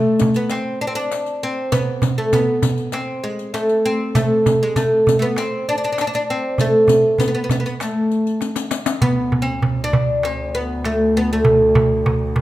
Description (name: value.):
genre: Arabic maqam ensemble.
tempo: 99 BPM.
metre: 4/4.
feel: straight.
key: unclear.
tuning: A4 = 440 Hz.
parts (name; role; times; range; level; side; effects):
oud; melody; 0.0-12.4 s; G#3 to D4; -17 LUFS; equal; none.
darbuka; percussion; 0.2-12.4 s; none; -20 LUFS; right 2 dB; none.
riq; percussion; 0.2-9.0 s; none; -27 LUFS; left 7 dB; none.
bright double bass; drone; 9.0-12.4 s; D2; -26 LUFS; equal; none.
room: moderate recital hall reverb, RT60 1.6 s.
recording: minimal, uncompressed stereo recording.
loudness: -16 LUFS.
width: side -15 dB against mid.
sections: 0.0-9.0 A section; 9.0-12.4 B section.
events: drum fill 8.4-9.0.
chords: none.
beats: 0.50 1.11 | 1.72 2.33 2.94 3.55 | 4.16 4.76 5.37 5.98 | 6.59 7.20 7.80 8.41 | 9.02 9.63 10.23 10.84 | 11.45 12.06.